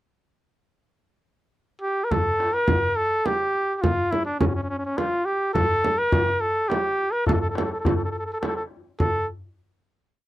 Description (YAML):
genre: Persian modal ensemble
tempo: 104 BPM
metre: 3/4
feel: straight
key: A dastgah homayun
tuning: A4 = 440 Hz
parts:
  - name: clear trumpet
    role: melody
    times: 1.8-9.3 s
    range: C#4 to Bb4+45c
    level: -23 LUFS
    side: equal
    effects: none
  - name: frame drum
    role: percussion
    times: 2.1-9.3 s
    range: none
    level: -26 LUFS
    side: right 2 dB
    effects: none
  - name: tombak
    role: percussion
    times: 2.1-9.3 s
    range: none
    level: -28 LUFS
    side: left 2 dB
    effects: none
room: light reverb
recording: dry, close 1970s-style studio recording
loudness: -21 LUFS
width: side -15 dB against mid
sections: 0.4-2.1 pickup bar; 2.1-9.0 A section; 9.0-10.3 final note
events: none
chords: none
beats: | 0.39 0.96 1.53 | 2.11 2.68 3.25 | 3.83 4.40 4.98 | 5.55 6.13 6.70 | 7.28 7.85 8.43 | 9.00